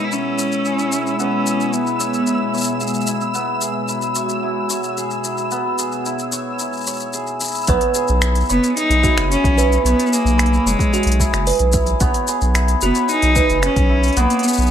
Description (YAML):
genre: folktronica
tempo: 111 BPM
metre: 4/4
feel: straight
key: unclear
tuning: A4 = 440 Hz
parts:
  - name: clear cello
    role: melody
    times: 0.0-3.1, 8.5-14.7 s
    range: G#3 to E4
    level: -19 LUFS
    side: left 1 dB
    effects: digital delay
  - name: warbly tape-like pad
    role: sustained chords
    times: 0.0-7.7 s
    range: B2 to E5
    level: -25 LUFS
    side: equal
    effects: chorus, built-in reverb
  - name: cimbalom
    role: arpeggios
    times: 0.0-14.7 s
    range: B3 to C#5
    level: -23 LUFS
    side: left 2 dB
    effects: low-pass filter, digital delay
  - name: flickering grainy texture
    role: texture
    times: 0.0-7.7 s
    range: E6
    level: -29 LUFS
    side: right 4 dB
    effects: built-in reverb
  - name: organic electronic drum kit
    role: drums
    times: 0.1-14.7 s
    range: finger snaps, hi-hat, shaker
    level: -24 LUFS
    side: left 2 dB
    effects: overdrive
  - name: music box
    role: second line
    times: 7.7-14.3 s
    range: F#4 to B5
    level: -23 LUFS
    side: right 7 dB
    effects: digital delay
  - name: round analog bass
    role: bass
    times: 7.7-14.7 s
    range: F#1 to B1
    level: -18 LUFS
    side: equal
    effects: none
  - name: electronic kick drum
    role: drums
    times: 7.7-13.9 s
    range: none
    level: -20 LUFS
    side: equal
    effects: overdrive
room: light reverb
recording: none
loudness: -15 LUFS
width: side -9 dB against mid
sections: 0.0-7.7 A section; 7.7-14.7 B section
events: filter sweep on hammered dulcimer 0.0-7.7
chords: 0.0 C#m7/B; 7.7 C#m7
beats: 0.12 0.66 | 1.20 1.74 2.28 2.82 | 3.36 3.90 4.44 4.98 | 5.52 6.06 6.61 7.14 | 7.69 8.23 8.77 9.31 | 9.85 10.39 10.93 11.47 | 12.01 12.55 13.09 13.63 | 14.17